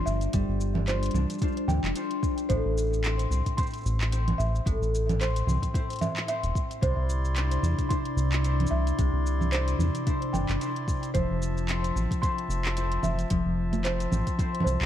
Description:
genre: folktronica.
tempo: 111 BPM.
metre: 4/4.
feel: swing 56% on 16ths.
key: C major.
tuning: A4 = 440 Hz.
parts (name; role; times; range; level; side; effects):
concert harp; arpeggios; 0.0-14.9 s; A2 to C5; -30 LUFS; left 2 dB; digital delay.
buzzing marimba with medium mallets; second line; 0.1-14.9 s; C5 to C6; -36 LUFS; right 3 dB; digital delay.
round analog bass; bass; 0.1-14.9 s; E1 to E2; -27 LUFS; equal; none.
organic electronic drum kit; drums; 0.1-14.9 s; congas, handclaps, hi-hat, shaker; -33 LUFS; right 2 dB; overdrive.
electronic kick drum; drums; 0.3-14.5 s; none; -28 LUFS; equal; overdrive.
hand-pumped harmonium; sustained chords; 6.8-14.9 s; F3 to C6; -37 LUFS; right 1 dB; none.
room: light reverb, small room ambience.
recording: dark, warm production, vinyl crackle.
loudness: -25 LUFS.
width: side -11 dB against mid.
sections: 0.0-14.9 A section.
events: none.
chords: 0.0 G7sus4; 2.5 Am; 6.8 Cadd9; 11.1 Fmaj7.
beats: | 0.34 0.88 1.42 1.96 | 2.50 3.04 3.58 4.12 | 4.66 5.20 5.74 6.28 | 6.82 7.36 7.90 8.44 | 8.98 9.53 10.06 10.61 | 11.15 11.69 12.23 12.77 | 13.31 13.85 14.39.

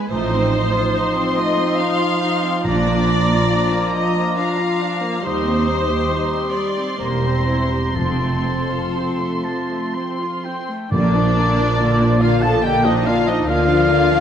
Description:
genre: classical, slow romantic movement for symphony orchestra.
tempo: 59-72 BPM.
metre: 3/4.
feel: rubato.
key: Bb major.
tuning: A4 = 440 Hz.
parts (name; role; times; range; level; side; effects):
muted symphonic violin section; melody; 0.0-14.2 s; D5 to C6; -26 LUFS; left 2 dB; none.
muted chamber violin section; second line; 0.0-14.2 s; D4 to F5; -25 LUFS; left 1 dB; none.
muted symphonic viola section; accompaniment; 0.0-14.2 s; D3 to G4; -25 LUFS; right 1 dB; none.
mellow clarinet; second line; 0.1-14.2 s; D4 to Bb4; -28 LUFS; left 1 dB; none.
mellow hollow concert flute; second line; 0.1-14.2 s; Bb4 to Eb6; -28 LUFS; left 1 dB; none.
warm oboe; second line; 0.1-14.2 s; D5 to C6; -27 LUFS; right 1 dB; none.
warm French horn section; sustained chords; 0.1-14.2 s; F3 to A4; -23 LUFS; left 2 dB; none.
muted symphonic cello section; bass; 0.1-14.2 s; Eb2 to D3; -24 LUFS; right 2 dB; none.
muted symphonic double bass section; bass; 0.1-14.2 s; E1 to Eb2; -24 LUFS; right 3 dB; none.
timpani; percussion; 2.6-3.9, 8.0-12.2 s; F2 to Bb2; -24 LUFS; right 2 dB; none.
room: wet recital hall reverb, RT60 1.4 s.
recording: none.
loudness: -16 LUFS.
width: side -8 dB against mid.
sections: 0.0-10.9 A section; 10.9-14.2 B section.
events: none.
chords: 0.1 F7/A; 2.6 Bb; 5.2 Cm/Eb; 7.0 C7/E; 8.0 F; 10.9 Bb; 13.5 Bb/D.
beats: | 0.11 0.95 1.80 | 2.65 3.52 4.38 | 5.24 6.11 7.00 | 7.96 8.94 9.94 | 10.91 11.79 12.63 | 13.47.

